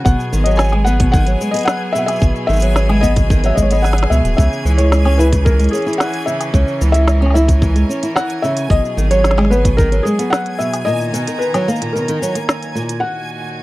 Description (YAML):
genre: folktronica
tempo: 111 BPM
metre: 4/4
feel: straight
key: C# dorian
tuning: A4 = 439 Hz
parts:
  - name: felt-muted upright piano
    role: melody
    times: 0.0-13.6 s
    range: G#4 to G#5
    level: -20 LUFS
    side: left 1 dB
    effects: tape echo
  - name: rich string quartet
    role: sustained chords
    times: 0.0-13.6 s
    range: A#2 to A#5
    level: -26 LUFS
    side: right 1 dB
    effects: none
  - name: flamenco guitar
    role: arpeggios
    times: 0.0-13.0 s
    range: A#2 to E4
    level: -20 LUFS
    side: equal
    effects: none
  - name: backwards swelling texture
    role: texture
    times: 0.0-13.6 s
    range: G#5 to G#6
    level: -29 LUFS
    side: right 1 dB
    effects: built-in reverb
  - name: warm sub bass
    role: bass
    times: 0.1-10.0 s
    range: D#1 to C#2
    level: -14 LUFS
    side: equal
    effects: none
  - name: electronic kick drum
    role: drums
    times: 0.1-9.9 s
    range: none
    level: -14 LUFS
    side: equal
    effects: none
  - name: organic electronic drum kit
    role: drums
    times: 0.1-13.0 s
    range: cabasa, hi-hat, snare drum, woodblock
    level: -22 LUFS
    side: equal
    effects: low-pass filter on hats, low-pass filter on perc, low-pass filter on snare, low-pass filter on room
room: little or no reverb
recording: dry, close 1970s-style studio recording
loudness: -13 LUFS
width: side -18 dB against mid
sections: 0.0-13.0 A section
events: break 10.9-13.0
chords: 0.1 G#m7; 4.4 C#m; 8.7 G#m7; 10.9 Bmaj7; 13.0 D#m